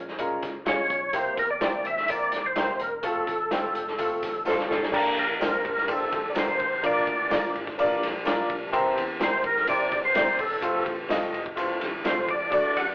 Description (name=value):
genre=uptempo 1960s-style soul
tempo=127 BPM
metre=4/4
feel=straight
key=unclear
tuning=A4 = 439 Hz
part: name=vintage muted picked electric bass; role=bass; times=0.0-12.9 s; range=E1 to F#2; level=-47 LUFS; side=equal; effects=none
part: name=vintage drum kit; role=drums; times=0.1-12.9 s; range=crash cymbal, hi-hat, kick drum, ride cymbal, snare drum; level=-30 LUFS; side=equal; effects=none
part: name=bright upright piano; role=accompaniment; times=0.2-12.8 s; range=Ab3 to Eb5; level=-28 LUFS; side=left 1 dB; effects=none
part: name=percussive tonewheel organ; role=melody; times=0.7-12.9 s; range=A4 to F#5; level=-25 LUFS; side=equal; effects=overdrive, chorus vibrato, slow rotary speaker
part: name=electric guitar through a small old amp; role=stabs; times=0.7-12.2 s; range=Bb3 to Db5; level=-33 LUFS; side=equal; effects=none
part: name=tambourine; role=percussion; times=1.1-12.6 s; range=none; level=-53 LUFS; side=right 1 dB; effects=none
part: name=mellow horn section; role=second line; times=4.5-4.8 s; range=C4 to A4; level=-26 LUFS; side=equal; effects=none
room=wet studio reverb, RT60 0.6 s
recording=band playing live in one room, telephone sound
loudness=-23 LUFS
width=side -24 dB against mid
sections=0.0-4.9 A section; 4.9-12.9 B section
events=band accent 3.0-4.9; drum fill 4.5-4.9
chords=0.0 Db; 1.1 C7; 3.0 F; 4.9 Gmadd9; 6.8 Bb; 8.7 C7; 10.6 F